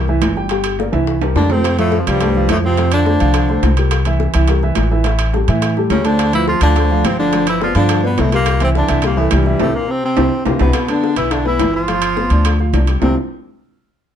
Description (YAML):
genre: Afro-Cuban jazz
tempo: 211 BPM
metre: 4/4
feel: straight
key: C major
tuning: A4 = 440 Hz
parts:
  - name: warm baby grand piano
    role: accompaniment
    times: 0.0-13.2 s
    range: C3 to G5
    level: -19 LUFS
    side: right 1 dB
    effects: none
  - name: upright bass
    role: bass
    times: 0.0-13.2 s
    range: G1 to A2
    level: -16 LUFS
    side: equal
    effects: none
  - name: bongos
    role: percussion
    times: 0.1-13.1 s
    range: none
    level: -25 LUFS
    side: left 8 dB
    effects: none
  - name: timbales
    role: percussion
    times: 0.2-13.1 s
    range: none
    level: -23 LUFS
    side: right 6 dB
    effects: none
  - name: breathy tenor saxophone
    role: melody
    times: 1.4-3.7, 5.9-13.2 s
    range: F3 to F4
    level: -19 LUFS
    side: equal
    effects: none
  - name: warm baritone saxophone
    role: second line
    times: 1.4-3.7, 5.9-13.1 s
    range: F2 to F3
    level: -23 LUFS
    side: left 5 dB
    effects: none
room: light reverb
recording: dark, warm production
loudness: -13 LUFS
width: side -9 dB against mid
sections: 0.0-10.7 A section; 10.7-13.0 B section; 13.0-14.2 C section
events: drum fill 0.9-1.6, 9.9-10.7; band accent 9.6-10.7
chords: 0.0 C; 0.5 Gm; 1.1 C6; 1.6 F69; 3.9 C6; 5.1 A5; 6.2 Dm7; 7.3 G7; 8.5 C9; 10.7 Em7; 11.9 G7; 13.0 C9